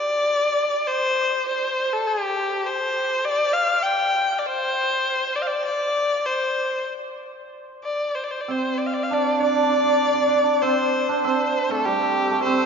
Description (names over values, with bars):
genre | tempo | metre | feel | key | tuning
chinese traditional, Chinese chamber ensemble | 99 BPM | 4/4 | rubato | unclear | A4 = 439 Hz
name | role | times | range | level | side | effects
clear erhu | melody | 0.0-12.7 s | G4 to G5 | -21 LUFS | left 2 dB | none
hammered dulcimer | second line | 0.0-0.7, 8.5-12.7 s | G3 to G4 | -21 LUFS | right 3 dB | none
room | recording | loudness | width
wet cathedral reverb, RT60 4.5 s | recorded in a church or concert hall, nothing above 7.5 kHz | -20 LUFS | side -6 dB against mid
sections
0.0-12.7 A section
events
none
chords
none